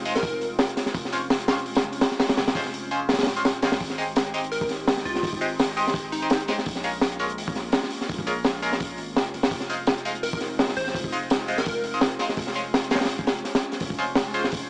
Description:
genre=drum and bass, jungle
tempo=168 BPM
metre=4/4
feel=swing 55% on 16ths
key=unclear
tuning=A4 = 444 Hz
part: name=airy breathy pad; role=sustained chords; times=0.0-14.7 s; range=Ab3 to G4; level=-34 LUFS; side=equal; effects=chorus
part: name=long sustained 808-style bass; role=bass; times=0.0-14.7 s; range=Eb1 to C2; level=-40 LUFS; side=equal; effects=tube saturation
part: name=band-passed chord stab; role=stabs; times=0.1-14.4 s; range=Ab3 to C5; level=-29 LUFS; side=equal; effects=phaser, cassette tape, dub echo
part: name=crunchy breakbeat drum kit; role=drums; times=0.1-14.6 s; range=hi-hat, kick drum, snare drum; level=-24 LUFS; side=equal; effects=none
part: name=plucky unison lead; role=melody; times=0.2-0.5, 4.5-6.4, 10.2-11.9 s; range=Eb4 to C5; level=-31 LUFS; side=equal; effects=phaser, dub echo
room=small room ambience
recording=dry, gritty hardware recording, vinyl crackle, small speaker sound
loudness=-22 LUFS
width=side -28 dB against mid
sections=0.0-3.8 A section; 3.8-14.7 A section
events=drop 0.0-3.8, 3.8-14.7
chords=0.0 Fm7; 0.9 Dbmaj7; 3.8 Abmaj7; 6.7 Bbm7; 9.5 Fm7; 12.4 Dbmaj7

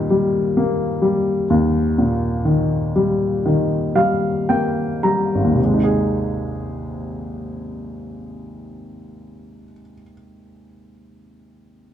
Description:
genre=folk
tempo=53-66 BPM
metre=4/4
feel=straight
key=Ab major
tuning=A4 = 440 Hz
part: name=warm upright piano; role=accompaniment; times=0.0-11.9 s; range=Ab1 to Bb5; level=-18 LUFS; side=left 1 dB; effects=none
room=moderate large studio reverb, RT60 1.2 s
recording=dark, warm production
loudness=-17 LUFS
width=side -10 dB against mid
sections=0.0-5.6 A section; 5.6-10.1 B section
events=slowing down 0.0-5.6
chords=0.0 Eb; 5.6 Ab

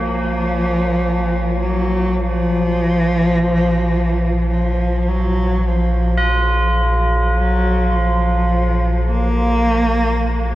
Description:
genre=dark ambient drone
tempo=free time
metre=none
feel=none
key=Bb minor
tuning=A4 = 439 Hz
part: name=rich cello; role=melody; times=0.0-10.6 s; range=F3 to Bb3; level=-18 LUFS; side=equal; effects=diffuse ambient delay
part: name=tubular bells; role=arpeggios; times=0.0-10.6 s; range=Db4 to F4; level=-24 LUFS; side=right 1 dB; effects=diffuse ambient delay
part: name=deep rumbling drone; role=drone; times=0.0-10.6 s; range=Bb1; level=-19 LUFS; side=equal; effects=built-in reverb, wide subtle chorus
room=wet huge ambient reverb, RT60 8.9 s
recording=worn, warbling old tape, cassette tape, warbly pitch drift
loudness=-15 LUFS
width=side -15 dB against mid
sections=0.0-10.6 A section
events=filter sweep on synth drone 0.0-10.6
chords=0.0 Bb5

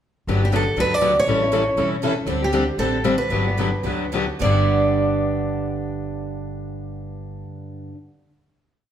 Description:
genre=acoustic string swing (jazz manouche)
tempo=203-241 BPM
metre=4/4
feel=swing 55% on 8ths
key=G major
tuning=A4 = 440 Hz
part: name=picked steel-string acoustic guitar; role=accompaniment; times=0.3-8.0 s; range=G2 to A4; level=-24 LUFS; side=left 3 dB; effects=none
part: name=picked steel-string acoustic guitar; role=accompaniment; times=0.3-7.9 s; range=G2 to A4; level=-28 LUFS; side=right 5 dB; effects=none
part: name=upright bass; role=bass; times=0.3-7.4 s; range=E1 to D2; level=-26 LUFS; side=left 1 dB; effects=none
part: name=picked steel-string acoustic guitar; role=melody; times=0.4-7.4 s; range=G4 to D5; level=-22 LUFS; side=right 2 dB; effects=none
room=wet large studio reverb, RT60 1.0 s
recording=band playing live in one room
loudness=-18 LUFS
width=side -10 dB against mid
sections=0.3-4.4 A section; 4.4-6.8 final chord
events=slowing down 2.3-4.4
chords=0.3 Gmaj7; 1.3 A7; 2.3 D7sus4; 3.3 Gmaj7; 4.4 G

